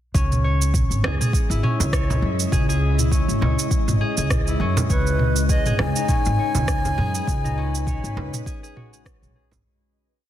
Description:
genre	organic downtempo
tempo	101 BPM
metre	4/4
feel	swing 56% on 16ths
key	C# minor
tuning	A4 = 438 Hz
part	ethereal airy pad	sustained chords	1.0-9.7 s	C#3 to D#5	-30 LUFS	left 2 dB	ensemble chorus, built-in reverb, phaser, sidechain pumping
part	concert harp	arpeggios	0.1-10.3 s	C#4 to C#5	-28 LUFS	left 3 dB	tape echo
part	upright bass	bass	0.1-9.6 s	G#1 to F#2	-22 LUFS	equal	sidechain pumping
part	electronic kick drum	drums	0.1-9.2 s	none	-22 LUFS	equal	none
part	organic electronic drum kit	drums	0.2-9.6 s	cabasa, rim click, toms	-26 LUFS	right 2 dB	soft clipping on snare
part	frame drum	percussion	1.0-9.6 s	none	-29 LUFS	right 3 dB	none
part	breathy bright bass bansuri	melody	4.9-9.0 s	B4 to G#5	-27 LUFS	equal	tape echo
room	light reverb, small room ambience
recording	dense, heavily limited modern master, faint mains hum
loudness	-18 LUFS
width	side -12 dB against mid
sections	0.1-9.7 groove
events	fade-out 6.5-9.7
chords	0.1 C#madd9; 4.9 G#m

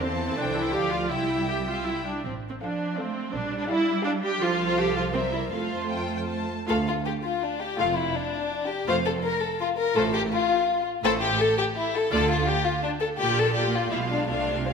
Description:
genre	quick classical-period movement for string orchestra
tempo	165 BPM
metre	3/4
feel	rubato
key	F major, D minor from 6.7 s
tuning	A4 = 440 Hz
part	warm studio violin section	melody	0.0-14.7 s	C5 to A5	-34 LUFS	left 4 dB	none
part	warm chamber violin section	second line	0.0-14.7 s	C4 to F5	-26 LUFS	left 4 dB	none
part	rich studio viola section	accompaniment	0.0-14.7 s	G#3 to G4	-28 LUFS	right 2 dB	none
part	rich chamber double bass section	bass	0.0-14.7 s	F1 to F2	-34 LUFS	right 4 dB	none
part	warm chamber cello section	bass	0.0-14.7 s	D2 to A3	-33 LUFS	right 4 dB	none
room	wet scoring stage reverb, RT60 1.7 s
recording	none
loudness	-23 LUFS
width	side -6 dB against mid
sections	0.0-6.7 A section; 6.7-14.7 B section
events	none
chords	0.0 C/E; 0.7 Dmadd11; 1.1 C; 2.2 F/A; 3.3 Gm7/Bb; 4.4 F/C; 5.1 C7; 5.5 F; 6.7 Dm; 7.8 Dm/F; 10.0 F/A; 11.0 A5; 12.1 Dm; 13.2 Bb6; 13.9 Bdim7

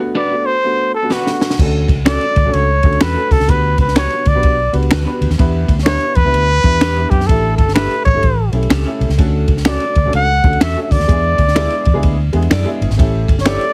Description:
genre	uptempo 1960s-style soul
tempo	126 BPM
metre	4/4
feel	swing 63% on 8ths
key	D major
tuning	A4 = 440 Hz
part	warm upright piano	accompaniment	0.0-13.7 s	G#3 to B4	-25 LUFS	equal	none
part	breathy trumpet	melody	0.2-13.7 s	F#4 to F#5	-19 LUFS	equal	none
part	electric guitar at the edge of break-up	stabs	0.2-13.6 s	C#4 to D5	-24 LUFS	equal	slapback echo
part	compact cocktail drum kit	drums	1.1-13.7 s	crash cymbal, hi-hat, kick drum, ride cymbal, snare drum	-18 LUFS	equal	none
part	vintage muted fingered electric bass	bass	1.6-13.6 s	G1 to F#2	-19 LUFS	equal	none
part	finger snaps	percussion	2.1-13.6 s	none	-22 LUFS	equal	none
room	light reverb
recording	heavily compressed radio sound, multiband compression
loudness	-14 LUFS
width	mono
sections	0.0-1.6 A section; 1.6-13.7 B section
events	break 0.0-1.6; trumpet solo 0.0-1.6; drum fill 1.1-1.6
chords	0.0 D6; 1.6 Dmaj7; 3.5 Gmaj7; 5.4 Em7; 7.3 A7sus4; 8.2 A7; 9.2 Dmaj7; 11.1 E7; 13.0 A7

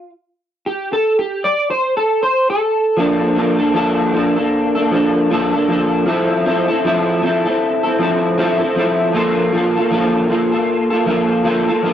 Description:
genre	indie pop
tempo	78 BPM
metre	4/4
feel	swing 60% on 16ths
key	F major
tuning	A4 = 440 Hz
part	electric guitar through a small old amp	solo	0.0-11.9 s	F3 to D5	-14 LUFS	equal	ensemble chorus, warbly pitch drift
room	moderate studio reverb, RT60 0.6 s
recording	cassette tape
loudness	-14 LUFS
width	side -10 dB against mid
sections	0.0-3.0 A section; 3.0-11.9 B section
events	clean electric guitar solo 0.0-3.0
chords	0.0 N.C.; 3.0 Bbmaj7/F; 6.1 Fmaj7; 9.1 Fadd11

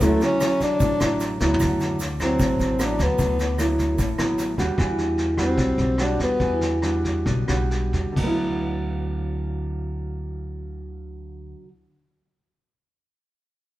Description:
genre	bossa nova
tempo	128-151 BPM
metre	4/4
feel	straight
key	D major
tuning	A4 = 440 Hz
part	breathy tenor saxophone	melody	0.0-6.8 s	A3 to D4	-23 LUFS	left 1 dB	none
part	nylon-string guitar	accompaniment	0.0-11.8 s	A2 to F#4	-25 LUFS	equal	none
part	upright bass	bass	0.0-11.5 s	A1 to E2	-26 LUFS	equal	none
part	vintage brush drum kit	drums	0.0-8.3 s	crash cymbal, kick drum, rim click, snare drum, toms	-28 LUFS	equal	none
part	egg shaker	percussion	0.0-4.8 s	none	-41 LUFS	right 5 dB	none
room	moderate stone room reverb, RT60 1.4 s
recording	band playing live in one room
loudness	-20 LUFS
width	side -15 dB against mid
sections	0.0-1.6 A section; 1.6-8.2 B section; 8.2-11.9 C section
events	drum fill 1.4; tenor saxophone solo 1.6-8.2; slowing down 4.8-8.2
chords	0.0 Dmaj9; 1.6 D69; 4.8 Em9; 8.2 D69

